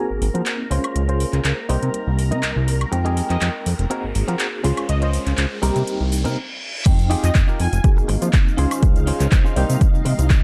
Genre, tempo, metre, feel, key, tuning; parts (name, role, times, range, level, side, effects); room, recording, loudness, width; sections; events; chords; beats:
filtered disco house; 122 BPM; 4/4; swing 53% on 16ths; F minor; A4 = 440 Hz
analog synth brass; melody; 0.0, 3.3-7.9 s; Eb5 to Ab5; -33 LUFS; equal; chorus, cassette tape, sidechain pumping, low-pass filter, tape echo
barky reed electric piano; accompaniment; 0.0-10.4 s; G3 to G5; -30 LUFS; equal; overdrive, fast tremolo, phaser, vintage 12-bit sampler grit, sidechain pumping, low-pass filter
string machine, full ensemble; sustained chords; 0.0-10.4 s; Eb4 to Bb5; -35 LUFS; equal; ensemble chorus, sidechain pumping, low-pass filter
direct-recorded clean electric guitar; riff; 0.0-10.2 s; C4 to Eb5; -30 LUFS; equal; sidechain pumping, low-pass filter
riser and reverse cymbal; sound effects; 1.6-6.9 s; -37 LUFS; equal
fat analog bass; bass; 0.1-10.4 s; F1 to F3; -22 LUFS; equal; tube saturation, sidechain pumping, low-pass filter
house drum kit; drums; 0.2-10.4 s; crash cymbal, handclaps, hi-hat, woodblock; -30 LUFS; equal; sidechain pumping on hats, high-pass filter on hats, high-pass filter on snare, sidechain pumping on perc, high-pass filter on perc, sidechain pumping on cymbals, high-pass filter on cymbals
egg shaker; percussion; 0.2-10.4 s; -40 LUFS; equal; sidechain pumping on perc, low-pass filter on perc
electronic kick drum; drums; 6.9-10.4 s; -18 LUFS; equal; overdrive
digital ambience; dark, warm production; -20 LUFS; mono
0.0-6.9 A section; 6.9-10.4 B section
build-up 0.0-6.9; filter sweep 0.0-6.9; riser 1.6-6.4; reverse cymbal 5.9-6.9; stop 6.4-6.9; drop 6.9-10.4
0.0 Ab9; 0.7 Dbmaj7; 1.7 Cm7; 2.9 Fm9; 3.9 Ab9; 4.6 Dbmaj7; 5.6 Cm7; 6.9 Fm9; 7.8 Ab9; 8.6 Dbmaj7; 9.6 Cm7
0.47 | 0.96 1.45 1.94 2.43 | 2.93 3.42 3.91 4.40 | 4.89 5.38 5.88 6.37 | 6.86 7.35 7.84 8.34 | 8.83 9.32 9.81 10.30